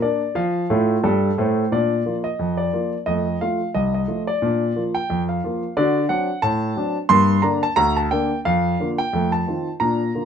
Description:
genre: ragtime piano.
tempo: 89 BPM.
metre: 2/4.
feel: swing 57% on 16ths.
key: Bb major.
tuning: A4 = 440 Hz.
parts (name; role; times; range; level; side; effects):
warm concert grand piano; solo; 0.0-10.2 s; C2 to C6; -18 LUFS; equal; none.
room: moderate studio reverb, RT60 0.7 s.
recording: minimal, uncompressed stereo recording.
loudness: -18 LUFS.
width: side -7 dB against mid.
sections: 0.0-1.7 A section; 1.7-10.2 B section.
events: grand piano fill 0.7-1.7.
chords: 0.4 F; 1.7 Bb; 3.1 F; 4.4 Bb; 5.8 D7; 7.1 Gm; 8.5 Bb/F; 9.1 F7.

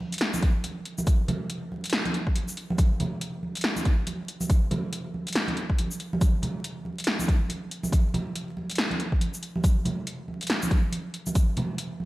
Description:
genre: dubstep.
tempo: 140 BPM.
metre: 4/4.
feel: swing 59% on 16ths, half-time.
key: none.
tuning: none.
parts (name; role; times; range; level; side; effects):
congas; percussion; 0.0-12.1 s; none; -31 LUFS; right 2 dB; dub echo.
deep house drum kit; drums; 0.1-11.9 s; hi-hat, shaker, snare drum; -29 LUFS; equal; overdrive, gated reverb.
electronic kick drum; drums; 0.4-11.5 s; none; -22 LUFS; equal; overdrive.
room: little or no reverb.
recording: bright 1980s-style digital production, vinyl crackle.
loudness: -25 LUFS.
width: side -18 dB against mid.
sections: 0.0-12.1 A section.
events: none.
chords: none.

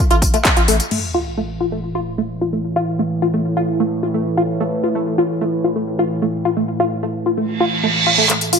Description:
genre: driving peak-time techno.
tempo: 130 BPM.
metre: 4/4.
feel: straight.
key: unclear.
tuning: A4 = 440 Hz.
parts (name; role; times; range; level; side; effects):
tight sequenced synth; riff; 0.1-8.6 s; A3 to F4; -20 LUFS; left 1 dB; chorus, cassette tape, sidechain pumping, tape echo.
saturated sub bass; bass; 0.1-0.8 s; A1; -21 LUFS; equal; overdrive, sidechain pumping, low-pass filter.
techno drum kit; drums; 0.1-1.0, 8.3-8.6 s; crash cymbal, handclaps, hi-hat, tambourine; -18 LUFS; left 1 dB; overdrive, sidechain pumping on hats, sidechain pumping on perc, sidechain pumping on cymbals.
electronic kick drum; drums; 0.2-0.5 s; none; -15 LUFS; equal; overdrive.
analog drone; drone; 1.3-8.6 s; A2 to E3; -21 LUFS; right 1 dB; chorus, sidechain pumping.
sub drop, reverse cymbal and riser; sound effects; 0.9-2.8, 7.6-8.6 s; none; -18 LUFS; right 4 dB; none.
room: moderate stone room reverb, RT60 1.4 s, digital ambience.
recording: none.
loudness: -16 LUFS.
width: side -6 dB against mid.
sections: 0.9-8.3 A section.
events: band accent 0.5; impact 0.9-2.8; filter sweep on synth arpeggio sound 0.9-8.3; reverse cymbal 7.6-8.3; drum fill 8.3; riser 8.3.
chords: 0.0 N.C.; 0.9 A5.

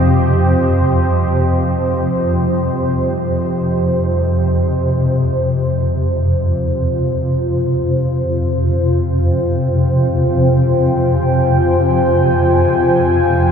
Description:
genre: dark ambient drone.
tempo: free time.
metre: none.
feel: none.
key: F minor.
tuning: A4 = 440 Hz.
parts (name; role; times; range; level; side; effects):
deep dark ambient pad; sustained chords; 0.0-13.5 s; F3 to Ab5; -16 LUFS; equal; chorus, built-in reverb.
swarming drone; drone; 0.0-13.5 s; F2 to C3; -15 LUFS; equal; built-in reverb.
room: wet huge ambient reverb, RT60 7.4 s.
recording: none.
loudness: -13 LUFS.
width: side -7 dB against mid.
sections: 0.0-4.9 A section; 4.9-13.5 B section.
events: none.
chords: 0.0 Cm/F; 4.9 Fmadd9.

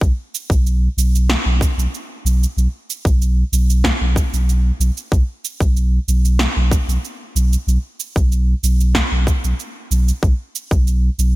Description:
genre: organic downtempo.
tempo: 94 BPM.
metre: 4/4.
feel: straight.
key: unclear.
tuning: A4 = 440 Hz.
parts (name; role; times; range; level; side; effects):
warm sub bass; bass; 0.0-11.4 s; B1; -15 LUFS; equal; sidechain pumping.
electronic kick drum; drums; 0.0-10.8 s; none; -16 LUFS; equal; none.
electronic shaker and snare drum; drums; 0.0-11.3 s; none; -23 LUFS; right 2 dB; none.
room: little or no reverb.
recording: bright 1980s-style digital production.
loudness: -15 LUFS.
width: side -19 dB against mid.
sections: 0.0-11.4 A section.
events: none.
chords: none.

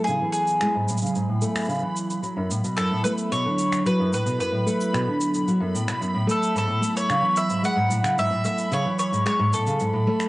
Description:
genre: folktronica.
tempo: 111 BPM.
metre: 4/4.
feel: straight.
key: A major.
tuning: A4 = 441 Hz.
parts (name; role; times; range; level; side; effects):
mandolin; melody; 0.0-10.3 s; G#4 to F#5; -24 LUFS; equal; cassette tape.
warbly tape-like pad; sustained chords; 0.0-10.3 s; F#3 to G#5; -29 LUFS; right 1 dB; chorus, built-in reverb, phaser, cassette tape.
fingerpicked steel-string acoustic guitar; arpeggios; 0.0-10.3 s; F#2 to A3; -25 LUFS; equal; low-pass filter, cassette tape, tape echo.
backwards swelling texture; texture; 0.6-10.3 s; B5; -35 LUFS; equal; built-in reverb, cassette tape.
electronic cabasa and finger snaps; drums; 0.1-10.3 s; none; -33 LUFS; equal; small room ambience, cassette tape.
room: wet spring reverb, RT60 1.3 s, digital ambience.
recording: home recording on cassette, nothing above 10.5 kHz.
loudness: -21 LUFS.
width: side -19 dB against mid.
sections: 0.0-10.3 A section.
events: filter sweep on steel-string acoustic guitar 0.0-10.3; filter sweep on ambient pad 0.0-10.3.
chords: 0.0 Amaj7; 2.2 Bm7; 6.6 Amaj7.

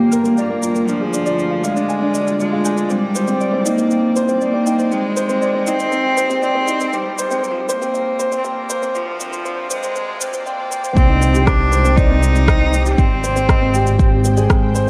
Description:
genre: piano and strings electronica.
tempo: 119 BPM.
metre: 4/4.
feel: straight.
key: C minor.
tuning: A4 = 440 Hz.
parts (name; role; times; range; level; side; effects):
rich cello; melody; 0.0-14.5 s; F3 to Eb4; -23 LUFS; equal; none.
granular cloud pad; sustained chords; 0.0-14.9 s; G3 to G5; -30 LUFS; equal; built-in reverb, sidechain pumping.
warm grand piano; riff; 0.0-14.9 s; Bb3 to Ab5; -22 LUFS; equal; none.
dark chamber double bass section; bass; 0.0-14.9 s; G1 to D2; -24 LUFS; equal; sidechain pumping, high-pass filter.
soft round pluck; arpeggios; 0.1-10.9 s; Bb4 to G6; -31 LUFS; equal; none.
electronic shaker and rim click; drums; 0.1-14.9 s; none; -28 LUFS; equal; high-pass filter on perc, high-pass filter on snare.
electronic kick drum; drums; 11.0-14.6 s; none; -17 LUFS; equal; none.
room: moderate concert hall reverb, RT60 2.1 s.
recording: dark, warm production, high-pass filter.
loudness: -17 LUFS.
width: mono.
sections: 0.0-11.0 A section; 11.0-14.9 B section.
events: build-up 0.0-11.0; filter sweep 0.0-11.0; drop 11.0-14.9.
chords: 0.0 Gm7; 0.9 Ddim; 2.9 Cmadd9; 4.9 Abmaj7; 6.9 Gm7; 9.0 Ddim; 11.0 Cmadd9; 13.0 Abmaj7.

